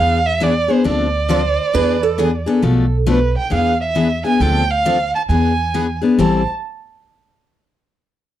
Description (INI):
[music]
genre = acoustic string swing (jazz manouche)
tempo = 135 BPM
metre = 4/4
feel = swing 64% on 8ths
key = A minor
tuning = A4 = 440 Hz
[part]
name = warm violin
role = melody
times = 0.0-6.5 s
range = B4 to A5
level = -19 LUFS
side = right 4 dB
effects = slapback echo
[part]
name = picked steel-string acoustic guitar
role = accompaniment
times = 0.0-6.4 s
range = A2 to A4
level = -17 LUFS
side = left 4 dB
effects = none
[part]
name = upright bass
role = bass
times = 0.0-6.4 s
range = A1 to E2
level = -20 LUFS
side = right 1 dB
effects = none
[part]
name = picked steel-string acoustic guitar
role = second line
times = 1.3-3.0, 6.2-6.5 s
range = G#4 to C5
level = -21 LUFS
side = right 8 dB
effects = none
[sound]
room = light reverb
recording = dry, close 1970s-style studio recording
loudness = -14 LUFS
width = side -12 dB against mid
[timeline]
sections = 0.0-6.2 A section; 6.2-8.0 B section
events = none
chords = 0.0 E7; 0.8 Dm7; 1.7 E7; 2.6 Bm7b5; 3.5 E7; 4.4 Dm7; 5.3 E7; 6.2 Am7